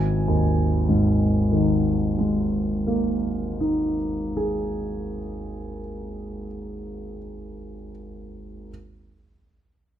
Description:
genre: classical, impressionist solo piano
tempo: 34-37 BPM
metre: 4/4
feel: rubato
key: unclear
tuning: A4 = 440 Hz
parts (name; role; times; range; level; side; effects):
- clear concert grand piano; solo; 0.0-8.7 s; G#1 to G#5; -22 LUFS; equal; none
room: moderate recital hall reverb, RT60 1.4 s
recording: close, detailed microphones, faint mains hum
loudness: -21 LUFS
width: side -10 dB against mid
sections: 0.0-6.4 A section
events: none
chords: 0.0 G#sus2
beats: 1.32 2.97 4.69

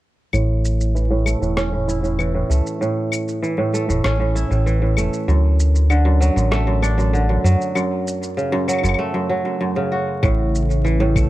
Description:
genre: folktronica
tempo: 97 BPM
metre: 4/4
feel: straight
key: A major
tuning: A4 = 439 Hz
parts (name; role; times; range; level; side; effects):
- kora; arpeggios; 0.3-11.3 s; F#2 to F#4; -20 LUFS; right 1 dB; low-pass filter, tape echo
- round analog bass; bass; 0.3-11.2 s; E1 to F#2; -17 LUFS; equal; none
- electronic claves, shaker and rim click; drums; 0.3-11.3 s; none; -27 LUFS; left 3 dB; none
- warm analog pad; sustained chords; 10.2-11.3 s; C#3 to A4; -24 LUFS; left 2 dB; lush chorus
- electronic kick drum; drums; 10.2-11.3 s; none; -18 LUFS; equal; none
room: little or no reverb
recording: dry, close 1970s-style studio recording, vinyl crackle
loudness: -17 LUFS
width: side -16 dB against mid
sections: 0.3-10.2 A section; 10.2-11.3 B section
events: filter sweep on kora 0.3-10.2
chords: 0.3 A; 5.3 D; 7.8 F#m; 10.2 A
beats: | 0.33 0.95 1.57 2.19 | 2.81 3.42 4.04 4.66 | 5.28 5.90 6.52 7.13 | 7.75 8.37 8.99 9.61 | 10.23 10.85

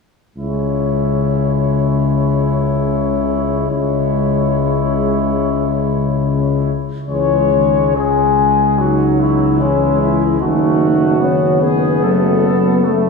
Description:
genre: classical, hymn-like piece for brass band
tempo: 72 BPM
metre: 4/4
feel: uneven beats, rubato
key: C# minor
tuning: A4 = 440 Hz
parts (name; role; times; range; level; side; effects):
- dark trumpet section; melody; 0.4-13.1 s; E4 to C#5; -20 LUFS; left 9 dB; none
- warm flugelhorn; second line; 0.4-13.1 s; F#3 to E4; -22 LUFS; right 3 dB; none
- clear euphonium; accompaniment; 0.4-13.1 s; G#3 to E4; -20 LUFS; left 1 dB; none
- dark trombone; accompaniment; 0.4-13.1 s; C#3 to F#3; -20 LUFS; left 2 dB; none
- warm tuba; bass; 0.4-13.1 s; F#1 to C#2; -18 LUFS; left 1 dB; none
room: wet concert hall reverb, RT60 2.1 s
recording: heard from further back in the room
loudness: -13 LUFS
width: side -4 dB against mid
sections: 0.4-7.1 A section; 7.1-13.1 B section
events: none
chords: 0.4 C#m; 10.4 D#dim/F#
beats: | 0.37 1.23 2.06 2.87 | 3.69 4.51 5.33 6.19 | 7.09 7.95 8.79 9.61 | 10.41 11.21 12.03 12.85

